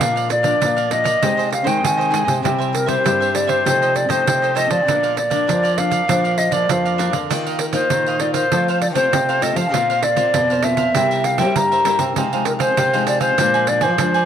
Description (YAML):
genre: samba and choro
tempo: 99 BPM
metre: 4/4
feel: straight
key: unclear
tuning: A4 = 443 Hz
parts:
  - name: hollow concert flute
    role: melody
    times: 0.0-14.3 s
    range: Bb4 to Bb5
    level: -18 LUFS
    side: left 1 dB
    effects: none
  - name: cavaquinho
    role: accompaniment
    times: 0.0-14.3 s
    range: D4 to Ab5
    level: -25 LUFS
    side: right 8 dB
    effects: none
  - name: nylon-string guitar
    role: accompaniment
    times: 0.0-14.3 s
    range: F2 to F4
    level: -26 LUFS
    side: left 11 dB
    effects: none
  - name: nylon-string guitar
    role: bass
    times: 0.0-14.3 s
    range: Bb2 to G3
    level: -22 LUFS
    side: equal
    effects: none
  - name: pandeiro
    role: percussion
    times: 0.0-14.3 s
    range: none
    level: -24 LUFS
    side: right 8 dB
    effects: none
room: moderate plate reverb, RT60 2.9 s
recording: 1960s-style stereo with parts hard left and right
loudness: -15 LUFS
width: side -9 dB against mid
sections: 0.0-14.3 A section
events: none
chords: 0.0 Bb; 1.2 Ab/C; 2.4 C; 3.7 F7/C; 4.9 Bb; 7.3 Ebsus2; 8.5 F; 9.7 Bbsus2; 11.0 C7; 12.2 Fm7/C; 13.4 Bb7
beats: | 0.01 0.62 1.23 1.84 | 2.44 3.05 3.66 4.27 | 4.88 5.48 6.09 6.70 | 7.31 7.91 8.52 9.13 | 9.74 10.35 10.95 11.56 | 12.17 12.78 13.39 13.99